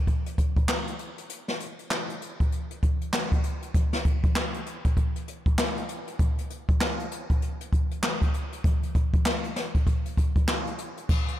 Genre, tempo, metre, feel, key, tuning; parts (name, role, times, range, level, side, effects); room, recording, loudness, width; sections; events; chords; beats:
R&B; 98 BPM; 4/4; swing 61% on 16ths
jazz brush drum kit; drums; 0.1-11.4 s; crash cymbal, handclaps, hi-hat, kick drum, snare drum; -24 LUFS; equal
light reverb; -24 LUFS; side -13 dB against mid
0.0-11.1 A section
break 1.3-1.9
0.07 0.69 | 1.30 1.91 2.52 3.13 | 3.75 4.36 4.97 5.58 | 6.20 6.81 7.42 8.03 | 8.64 9.26 9.87 10.48 | 11.09